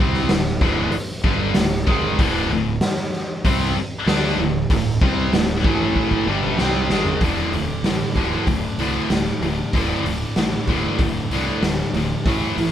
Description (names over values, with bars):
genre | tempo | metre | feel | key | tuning
hard rock | 95 BPM | 4/4 | straight | unclear | A4 = 440 Hz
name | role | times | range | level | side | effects
overdriven electric guitar | riff | 0.0-12.7 s | D2 to D4 | -24 LUFS | right 3 dB | none
scooped high-gain guitar | riff | 0.0-12.7 s | D2 to D4 | -25 LUFS | left 6 dB | distortion
fuzz fingered electric bass | bass | 0.0-12.7 s | D1 to D2 | -27 LUFS | equal | overdrive
raw garage drum kit | drums | 0.1-12.7 s | hi-hat, kick drum, snare drum, toms | -21 LUFS | equal | none
heavy high-gain guitar | riff | 2.2-12.7 s | D2 to D4 | -28 LUFS | equal | distortion
room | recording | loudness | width
light reverb | band playing live in one room | -18 LUFS | side -10 dB against mid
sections
0.0-7.2 A section; 7.2-12.7 B section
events
drum fill 6.0-7.2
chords
0.0 D5; 5.6 A5; 6.3 G#maj7#11/G; 7.2 D5